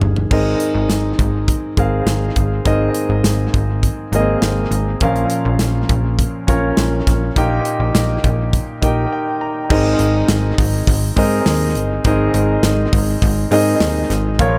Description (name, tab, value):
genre	piano-driven pop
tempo	102 BPM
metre	4/4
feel	straight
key	Ab major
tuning	A4 = 437 Hz
part	warm concert grand piano	accompaniment	0.0-14.6 s	Ab2 to Bb5	-21 LUFS	equal	dub echo
part	plucky analog bass	bass	0.0-14.6 s	G1 to Ab2	-21 LUFS	equal	none
part	modern studio drum kit	drums	0.0-14.5 s	crash cymbal, hi-hat, kick drum, snare drum, toms	-22 LUFS	equal	dub echo
room	studio ambience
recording	echo-heavy mix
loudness	-17 LUFS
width	mono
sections	0.3-9.7 A section; 9.7-14.6 B section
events	drum fill 0.0-0.3; grand piano fill 8.5-9.7; break 9.1-9.7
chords	0.3 Abadd9; 5.0 Bbm; 7.4 Eb/Bb; 9.7 Abadd9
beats	| 0.31 0.90 1.49 2.08 | 2.66 3.25 3.84 4.43 | 5.01 5.60 6.19 6.77 | 7.36 7.95 8.53 9.12 | 9.71 10.29 10.88 11.46 | 12.05 12.64 13.22 13.81 | 14.40